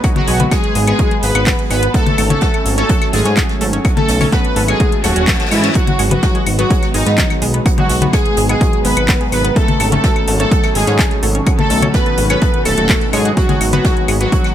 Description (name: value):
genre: melodic techno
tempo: 126 BPM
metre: 4/4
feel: straight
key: G# phrygian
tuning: A4 = 441 Hz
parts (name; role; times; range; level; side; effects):
- warm analog pad; sustained chords; 0.0-14.5 s; F#3 to A4; -24 LUFS; right 2 dB; chorus, sidechain pumping
- analog pluck; arpeggios; 0.0-14.4 s; F#3 to A5; -24 LUFS; right 1 dB; chorus, sidechain pumping, ping-pong delay
- electronic kick drum; drums; 0.0-14.4 s; none; -15 LUFS; equal; overdrive
- house drum kit; drums; 0.0-14.5 s; claves, congas, handclaps, hi-hat; -19 LUFS; left 3 dB; overdrive, sidechain pumping on hats, sidechain pumping on perc
- jazz brush drum kit; drums; 0.0-14.5 s; hi-hat, snare drum; -28 LUFS; right 2 dB; high-pass filter on hats, high-pass filter on snare, high-pass filter on room
- resonant sweep polysynth; melody; 0.2-14.5 s; D#3 to B4; -20 LUFS; equal; chorus, sidechain pumping, tape echo
- rich studio violin section; second line; 0.2-14.5 s; D#4 to B4; -22 LUFS; equal; sidechain pumping, ping-pong delay
- fat analog bass; bass; 0.3-14.3 s; D#1 to G#2; -17 LUFS; equal; sidechain pumping
- reverse cymbal; sound effects; 5.0-5.8 s; none; -24 LUFS; left 6 dB; none
- analog drone; drone; 6.9-14.5 s; B2 to D#3; -28 LUFS; left 1 dB; none
room: light reverb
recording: none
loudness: -12 LUFS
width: side -11 dB against mid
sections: 0.0-14.5 A section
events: reverse cymbal 5.0-5.8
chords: 0.0 G#m7; 1.9 F#m/G#; 5.8 G#m7; 9.6 F#m/G#; 13.4 G#m7